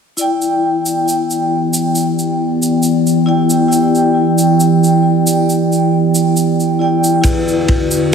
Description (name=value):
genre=trip hop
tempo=68 BPM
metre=4/4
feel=straight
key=E minor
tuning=A4 = 441 Hz
part: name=vibraphone with soft mallets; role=accompaniment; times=0.2-8.1 s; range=E4 to G5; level=-16 LUFS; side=left 3 dB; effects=harmonic tremolo, tape echo
part: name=warbly tape-like pad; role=sustained chords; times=0.8-8.1 s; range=E2 to D5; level=-14 LUFS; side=right 2 dB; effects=chorus, built-in reverb
part: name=egg shaker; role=percussion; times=0.2-8.1 s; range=none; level=-22 LUFS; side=right 2 dB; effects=none
part: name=crunchy breakbeat drum kit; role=drums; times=7.2-7.9 s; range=kick drum, ride cymbal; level=-15 LUFS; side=equal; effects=none
room=wet plate reverb, RT60 2.5 s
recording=dreamy mix soaked in reverb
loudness=-11 LUFS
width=side -6 dB against mid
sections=0.2-8.1 A section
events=none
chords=0.2 Em7; 7.2 Bm/E